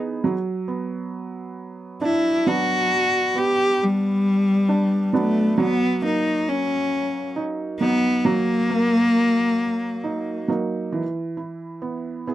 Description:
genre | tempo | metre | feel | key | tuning
acoustic folk-pop ballad | 45 BPM (dotted quarters) | 6/8 | straight | unclear | A4 = 441 Hz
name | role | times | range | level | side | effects
felt-muted upright piano | arpeggios | 0.0-12.3 s | E3 to G#4 | -25 LUFS | right 4 dB | none
warm cello | melody | 2.0-10.5 s | G3 to G4 | -20 LUFS | left 1 dB | none
room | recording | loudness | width
light reverb | dry, close 1970s-style studio recording | -19 LUFS | side -13 dB against mid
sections
0.0-10.9 A section; 10.9-12.3 B section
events
none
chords
0.2 Gmaj7; 5.6 F#6; 10.9 C#m7 (rootless)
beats
| 0.23 1.57 | 2.91 4.25 | 5.58 6.92 | 8.25 9.58 | 10.92 12.27

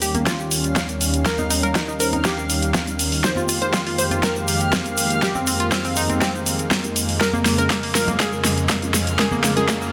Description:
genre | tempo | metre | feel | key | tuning
progressive house | 121 BPM | 4/4 | straight | Bb dorian | A4 = 440 Hz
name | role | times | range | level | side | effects
warm analog pad | sustained chords | 0.0-9.9 s | Eb2 to G4 | -26 LUFS | equal | chorus, sidechain pumping
analog pluck | arpeggios | 0.0-9.9 s | Bb3 to C5 | -27 LUFS | equal | chorus, cassette tape, sidechain pumping, digital delay
deep mellow chord stab | stabs | 0.0-9.9 s | G3 to C5 | -34 LUFS | equal | none
big-room dance drum kit | drums | 0.0-9.8 s | hi-hat, snare drum | -25 LUFS | equal | overdrive, sidechain pumping on hats
egg shaker | percussion | 0.0-9.9 s | none | -31 LUFS | equal | none
backwards swelling texture | texture | 0.6-9.9 s | F5 | -34 LUFS | equal | built-in reverb, sidechain pumping
congas and bongos | percussion | 0.1-9.8 s | none | -34 LUFS | equal | none
electronic kick drum | drums | 0.3-9.8 s | none | -28 LUFS | equal | overdrive, high-pass filter on kick
riser | sound effects | 9.3-9.9 s | none | barely audible | none | none
room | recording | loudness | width
moderate huge ambient reverb, RT60 7.4 s | none | -20 LUFS | mono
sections
0.0-9.9 A section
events
build-up 0.0-9.9; drum fill 0.0-9.9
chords
0.0 Eb7; 3.2 Fm11; 7.2 Bbm7/F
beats
0.27 0.76 | 1.26 1.75 2.25 2.75 | 3.24 3.74 4.23 4.73 | 5.22 5.72 6.22 6.71 | 7.21 7.70 8.20 8.70 | 9.19 9.69

